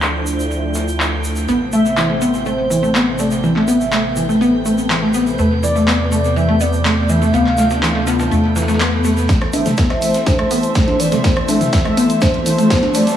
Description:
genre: progressive house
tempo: 123 BPM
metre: 4/4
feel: straight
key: A minor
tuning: A4 = 440 Hz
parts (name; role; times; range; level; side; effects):
- lush unison pad; sustained chords; 0.0-13.2 s; C3 to C5; -22 LUFS; equal; chorus, phaser, sidechain pumping
- round analog bass; bass; 0.0-9.3 s; A1 to E2; -22 LUFS; equal; sidechain pumping
- breakbeat sampler-style drum kit; drums; 0.0-13.2 s; hi-hat, snare drum; -32 LUFS; equal; none
- house drum kit; drums; 0.0-13.2 s; handclaps, hi-hat, rim click, snare drum; -23 LUFS; equal; overdrive, high-pass filter on cymbals, low-pass filter on cymbals, high-pass filter on snare, low-pass filter on snare, high-pass filter on hats, low-pass filter on hats, high-pass filter on room, low-pass filter on room
- tube shaker; percussion; 0.0-13.2 s; none; -30 LUFS; right 2 dB; none
- drifting glass-harmonics texture; texture; 0.0-13.2 s; E5 to G6; -30 LUFS; right 3 dB; chorus, built-in reverb, sidechain pumping
- wide unison pluck; arpeggios; 1.5-13.0 s; E3 to B3; -17 LUFS; left 1 dB; sidechain pumping, digital delay
- warm velvety synth lead; melody; 1.7-13.2 s; B4 to F5; -22 LUFS; equal; chorus, sidechain pumping, digital delay
- electronic kick drum; drums; 9.3-12.8 s; none; -17 LUFS; equal; overdrive
- riser; sound effects; 10.7-13.2 s; none; -30 LUFS; right 1 dB; none
- electronic bongos, congas and toms; percussion; 9.5-12.9 s; none; -23 LUFS; equal; sidechain pumping on perc, sidechain pumping on toms
room: moderate huge ambient reverb, RT60 4.6 s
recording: high-pass filter, small room ambience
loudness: -13 LUFS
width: side -10 dB against mid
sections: 0.0-9.3 A section; 9.3-13.2 B section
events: filter sweep on analog synth pad 0.0-9.3; build-up 9.3-13.2; drum fill 9.3-13.2; filter sweep on synth pluck 9.3-13.2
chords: 0.0 Dmadd9; 1.5 Am; 5.4 Esus4; 7.3 Dm; 8.3 Esus4

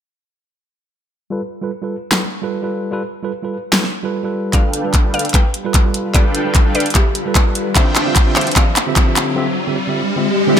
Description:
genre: future bass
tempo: 149 BPM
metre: 4/4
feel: swing 55% on 16ths, half-time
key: unclear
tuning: A4 = 440 Hz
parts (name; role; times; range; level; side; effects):
- tine electric piano; accompaniment; 1.3-10.6 s; D3 to E5; -22 LUFS; moving between left 2 dB and right 7 dB; overdrive, auto-pan, sidechain pumping, low-pass filter, digital delay
- pop drum kit; drums; 2.1-10.6 s; handclaps, hi-hat, snare drum; -17 LUFS; equal; none
- mallet-like synth pluck; melody; 4.5-8.7 s; G4 to G5; -25 LUFS; left 1 dB; chorus, sidechain pumping, dub echo
- shimmering ambient pad; sustained chords; 5.3-9.4 s; G3 to E5; -28 LUFS; left 2 dB; none
- dense compressed supersaw; riff; 4.5-8.5 s; D4 to G5; -23 LUFS; right 1 dB; sidechain pumping, low-pass filter, digital delay
- electronic kick drum; drums; 4.5-9.1 s; none; -14 LUFS; equal; none
- riser and swell; sound effects; 7.6-10.6 s; none; -21 LUFS; left 1 dB; none
room: light reverb, digital ambience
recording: none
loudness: -14 LUFS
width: side -8 dB against mid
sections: 1.3-4.5 A section; 4.5-10.6 B section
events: filter sweep on tine electric piano 1.3-4.5; build-up 4.5-10.6; drum fill 4.5-9.4; filter sweep on supersaw synth 4.5-10.6; riser 7.6-10.6; break 9.4-10.6; swell 10.2-10.6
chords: 1.3 G9; 7.8 Dm11

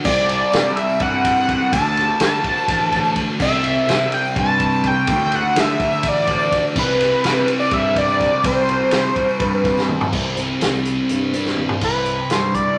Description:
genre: psychedelic rock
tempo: 250 BPM (eighths)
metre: 7/8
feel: straight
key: C lydian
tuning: A4 = 440 Hz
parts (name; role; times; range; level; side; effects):
- overdriven synth lead; melody; 0.0-12.8 s; B4 to A5; -21 LUFS; equal; distortion
- fuzz guitar; riff; 0.0-12.8 s; C3 to E4; -25 LUFS; equal; distortion, phaser
- fuzz picked electric bass; bass; 0.0-12.7 s; A1 to D3; -29 LUFS; equal; overdrive
- vintage drum kit; drums; 0.0-12.7 s; crash cymbal, hi-hat, kick drum, ride cymbal, snare drum, toms; -24 LUFS; equal; none
- tambourine; percussion; 0.0-12.4 s; none; -47 LUFS; equal; none
room: moderate large studio reverb, RT60 1.1 s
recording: none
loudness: -18 LUFS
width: mono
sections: 0.0-10.1 A section; 10.1-11.8 B section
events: drum fill 9.8-10.1, 11.5-11.8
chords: 0.1 Csus2; 1.7 D5; 3.4 C; 5.1 Dsus2; 6.8 C5; 11.8 Cmaj7

